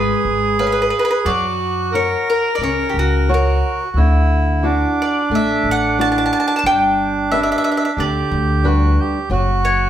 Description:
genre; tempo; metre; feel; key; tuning
italian folk, Italian serenade; 89 BPM; 4/4; straight; unclear; A4 = 438 Hz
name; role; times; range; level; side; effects
mandolin; melody; 0.0-9.9 s; F#4 to A5; -20 LUFS; left 1 dB; none
accordion; second line; 0.0-9.9 s; D4 to A#4; -19 LUFS; right 3 dB; none
flamenco guitar; accompaniment; 0.0-9.9 s; C#3 to E#5; -22 LUFS; left 2 dB; none
upright bass; bass; 0.0-9.9 s; F#1 to F#2; -19 LUFS; equal; none
room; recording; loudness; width
wet large studio reverb, RT60 1.0 s; band playing live in one room; -14 LUFS; side -10 dB against mid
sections
0.0-9.9 A section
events
none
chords
0.0 C#7; 1.3 F#; 4.0 Dadd9; 6.7 G; 9.3 F#5

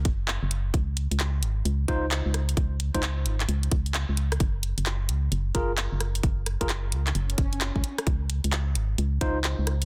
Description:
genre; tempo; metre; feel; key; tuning
UK garage, two-step garage; 131 BPM; 4/4; swing 64% on 16ths; unclear; A4 = 440 Hz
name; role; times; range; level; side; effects
organ-like FM bass; bass; 0.0-9.8 s; Gb1 to Db2; -29 LUFS; equal; none
electronic kick drum; drums; 0.1-9.3 s; none; -29 LUFS; equal; none
garage drum kit; drums; 0.1-9.8 s; handclaps, hi-hat, rim click; -33 LUFS; equal; none
tine electric piano; stabs; 1.9-9.4 s; Eb4 to C5; -35 LUFS; equal; delay
swell; sound effects; 7.3-8.1 s; none; -40 LUFS; equal; none
room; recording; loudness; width
light reverb; dense, heavily limited modern master; -27 LUFS; mono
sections
0.0-9.8 A section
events
swell 7.3-8.1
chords
0.0 N.C.; 4.4 Gb5; 8.1 N.C.

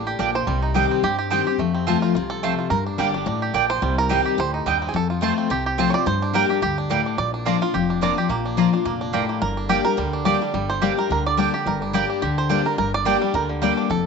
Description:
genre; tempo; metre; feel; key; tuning
bluegrass; 214 BPM; 4/4; swing 55% on 8ths; G minor; A4 = 440 Hz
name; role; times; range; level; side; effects
bluegrass banjo; melody; 0.0-14.1 s; D3 to D5; -24 LUFS; right 7 dB; none
picked steel-string acoustic guitar; accompaniment; 0.0-14.1 s; F2 to G4; -23 LUFS; left 9 dB; none
upright bass; bass; 0.0-14.1 s; F1 to G2; -28 LUFS; right 1 dB; none
mandolin; stabs; 0.2-13.7 s; Bb3 to Bb5; -26 LUFS; right 10 dB; none
room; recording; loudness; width
moderate echo chamber reverb, RT60 1.7 s; 1960s-style stereo with parts hard left and right, nothing above 7.8 kHz; -19 LUFS; side -5 dB against mid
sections
0.0-7.2 A section; 7.2-14.1 A section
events
five-string banjo solo 0.0-14.1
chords
0.5 Cm; 1.6 F; 2.7 Gm; 3.8 Cm; 4.9 F; 6.1 Gm; 7.2 Bb; 9.4 Gm

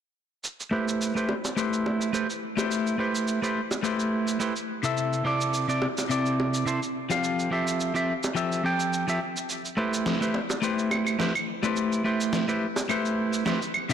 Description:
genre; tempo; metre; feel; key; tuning
sunset chillout; 106 BPM; 4/4; swing 55% on 16ths; A minor; A4 = 441 Hz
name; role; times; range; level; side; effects
electronic cabasa, snare drum and claves; drums; 0.4-13.9 s; none; -32 LUFS; equal; none
clean electric guitar; accompaniment; 0.7-13.9 s; C3 to G5; -25 LUFS; moving between left 5 dB and right 3 dB; auto-pan, low-pass filter, ping-pong delay
bongos; percussion; 1.3-12.9 s; none; -34 LUFS; right 2 dB; none
room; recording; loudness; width
wet plate reverb, RT60 2.8 s; blown-out, overdriven recording, overdrive; -24 LUFS; side -8 dB against mid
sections
0.4-13.9 A section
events
none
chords
0.4 Am9; 5.0 C69; 7.2 Fmaj9; 9.5 Am9

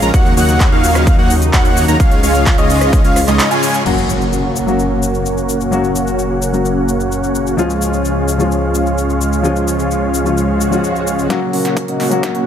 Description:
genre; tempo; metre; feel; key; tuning
EDM, festival progressive house; 129 BPM; 4/4; straight; F# major; A4 = 440 Hz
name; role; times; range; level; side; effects
lush unison pad; sustained chords; 0.0-12.5 s; A#2 to F#4; -21 LUFS; left 1 dB; chorus, sidechain pumping
wide unison lead; arpeggios; 0.0-3.8 s; D#5 to A#5; -19 LUFS; equal; sidechain pumping, ping-pong delay
dense compressed supersaw; riff; 0.0-12.5 s; G#3 to A#5; -17 LUFS; right 1 dB; sidechain pumping, low-pass filter, ping-pong delay
wide detuned saw bass; bass; 0.0-11.3 s; F#1 to D#2; -19 LUFS; equal; chorus, sidechain pumping
big-room dance drum kit; drums; 0.0-12.4 s; crash cymbal, handclaps, hi-hat, rim click, shaker, snare drum; -22 LUFS; left 1 dB; overdrive, high-pass filter on snare, high-pass filter on hats, high-pass filter on perc, high-pass filter on cymbals, high-pass filter on room
electronic kick drum; drums; 0.1-3.0, 11.3-12.3 s; none; -13 LUFS; equal; high-pass filter on kick
dark baby grand piano; accompaniment; 3.8-12.5 s; E#3 to F#4; -19 LUFS; left 4 dB; sidechain pumping, ping-pong delay
impact, swell and riser; sound effects; 3.9-5.7, 10.5-12.5 s; none; -26 LUFS; equal; none
room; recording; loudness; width
light reverb; none; -12 LUFS; side -9 dB against mid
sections
0.0-3.9 A section; 3.9-11.3 B section; 11.3-12.5 C section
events
drop 0.0-3.9; band accent 3.4; impact 3.9-5.7; filter sweep on analog synth pad 3.9-11.3; swell 10.5-11.3; build-up 11.3-12.5; drum fill 11.3-12.5; filter sweep on supersaw synth 11.3-12.5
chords
0.1 D#m7; 2.0 C#; 3.9 F#; 7.6 C#; 11.3 F#

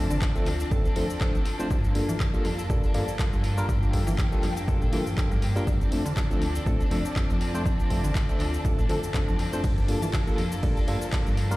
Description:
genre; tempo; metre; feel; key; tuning
filtered disco house; 121 BPM; 4/4; swing 55% on 16ths; G minor; A4 = 440 Hz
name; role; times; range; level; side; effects
barky tine electric piano; accompaniment; 0.0-11.6 s; F3 to C5; -32 LUFS; equal; phaser, sidechain pumping
warm symphonic string section; sustained chords; 0.0-11.6 s; Bb3 to A5; -37 LUFS; left 1 dB; sidechain pumping
electric guitar at the edge of break-up; riff; 0.0-11.6 s; F3 to A4; -34 LUFS; left 2 dB; analog chorus, sidechain pumping
slap-like FM bass; bass; 0.0-11.6 s; F1 to E3; -29 LUFS; equal; sidechain pumping
house drum kit; drums; 0.1-11.6 s; handclaps, hi-hat, ride cymbal, shaker; -38 LUFS; equal; sidechain pumping on perc, sidechain pumping on hats, sidechain pumping on cymbals
electronic kick drum; drums; 0.2-11.2 s; none; -26 LUFS; equal; none
room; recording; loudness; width
little or no reverb; played on a big sound system in a bare room, large studio reverb; -23 LUFS; side -18 dB against mid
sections
0.0-11.6 A section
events
none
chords
0.0 F6; 1.7 Gm9; 5.7 F6; 9.6 Gm9

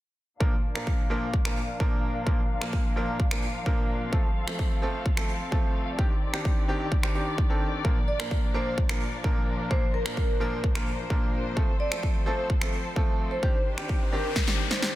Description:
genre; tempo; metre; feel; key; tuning
EDM, festival progressive house; 129 BPM; 4/4; straight; Bb major; A4 = 440 Hz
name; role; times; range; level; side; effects
bright concert grand piano; accompaniment; 0.4-15.0 s; Bb2 to Bb4; -32 LUFS; equal; sidechain pumping, tape echo
muted studio string section; sustained chords; 0.4-15.0 s; Eb3 to F5; -36 LUFS; left 2 dB; sidechain pumping, low-pass filter
electronic kick drum; drums; 0.4-14.5 s; none; -26 LUFS; equal; none
electronic finger snaps and snare drum; drums; 0.8-14.9 s; none; -33 LUFS; equal; overdrive, soft clipping on snare
vibraphone with medium mallets; melody; 8.1-14.8 s; Bb4 to D5; -33 LUFS; equal; digital delay
noise sweep; sound effects; 13.7-15.0 s; none; -34 LUFS; left 5 dB; none
room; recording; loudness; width
studio ambience; dense, heavily limited modern master; -24 LUFS; side -15 dB against mid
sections
0.4-15.0 A section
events
filter sweep on string section 0.4-15.0; noise sweep 13.7-15.0; drum fill 14.4-15.0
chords
0.4 Bb; 4.1 F; 6.0 Cmadd9; 7.8 Bb; 11.6 F; 13.4 Cmadd9

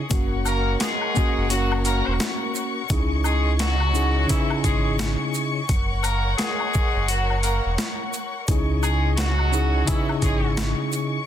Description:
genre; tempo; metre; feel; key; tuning
hip hop, boom-bap hip-hop; 86 BPM; 4/4; swing 61% on 16ths; C# dorian; A4 = 441 Hz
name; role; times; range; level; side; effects
mellow tine electric piano; accompaniment; 0.0-11.2 s; C#3 to G#4; -26 LUFS; left 1 dB; medium stereo tremolo, cassette tape
warm studio string section; sustained chords; 0.0-11.3 s; G#4 to C#6; -29 LUFS; left 4 dB; none
sub bass with octave; bass; 0.1-10.7 s; E1 to C#2; -23 LUFS; equal; none
boom bap sampler-style drum kit; drums; 0.1-11.1 s; hi-hat, kick drum, shaker, snare drum; -25 LUFS; equal; overdrive
egg shaker and woodblock; percussion; 0.1-11.1 s; none; -34 LUFS; left 7 dB; none
clear horn section; stabs; 0.5-10.5 s; E3 to A#4; -27 LUFS; equal; digital delay
room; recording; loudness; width
light reverb; dense, heavily limited modern master; -20 LUFS; side -10 dB against mid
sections
0.0-11.3 A section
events
none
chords
0.1 F#; 2.9 C#madd9; 5.7 F#; 8.5 C#madd9

